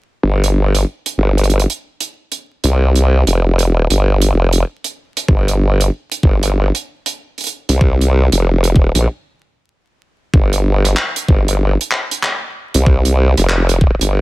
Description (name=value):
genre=glitch hop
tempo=95 BPM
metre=4/4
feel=swing 62% on 16ths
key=unclear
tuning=A4 = 440 Hz
part: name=formant-sweep wobble bass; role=bass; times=0.2-14.2 s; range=F1 to C2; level=-12 LUFS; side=equal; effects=chorus, tube saturation
part: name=modern studio drum kit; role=drums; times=0.4-14.1 s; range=handclaps, hi-hat, rim click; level=-19 LUFS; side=right 3 dB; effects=none
part: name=electronic kick drum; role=drums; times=5.3-14.0 s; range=none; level=-12 LUFS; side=equal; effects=none
room=little or no reverb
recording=vinyl crackle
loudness=-12 LUFS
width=side -19 dB against mid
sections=0.2-10.3 A section; 10.3-14.2 B section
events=stop 9.1-10.3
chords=none